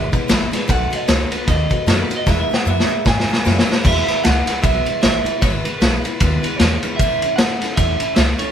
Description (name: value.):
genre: rockabilly.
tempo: 153 BPM.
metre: 4/4.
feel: swing 58% on 8ths.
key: E major.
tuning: A4 = 437 Hz.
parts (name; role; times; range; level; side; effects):
electric guitar through a small old amp; melody; 0.0-8.5 s; B4 to G#5; -22 LUFS; right 3 dB; none.
picked steel-string acoustic guitar; accompaniment; 0.0-8.5 s; E2 to F#4; -25 LUFS; left 3 dB; none.
upright bass; bass; 0.0-8.4 s; G#1 to A2; -21 LUFS; equal; none.
vintage drum kit; drums; 0.1-8.5 s; crash cymbal, kick drum, ride cymbal, snare drum; -17 LUFS; equal; none.
room: light reverb.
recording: band playing live in one room, lossy compression artefacts.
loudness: -15 LUFS.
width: side -9 dB against mid.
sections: 0.0-3.8 A section; 3.8-8.5 B section.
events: drum fill 2.3-3.8.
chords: 0.0 E; 0.7 B7; 2.3 E; 7.0 A.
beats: 0.30 | 0.70 1.09 1.49 1.88 | 2.27 2.67 3.06 3.45 | 3.85 4.24 4.63 5.03 | 5.42 5.81 6.20 6.60 | 6.99 7.38 7.77 8.16.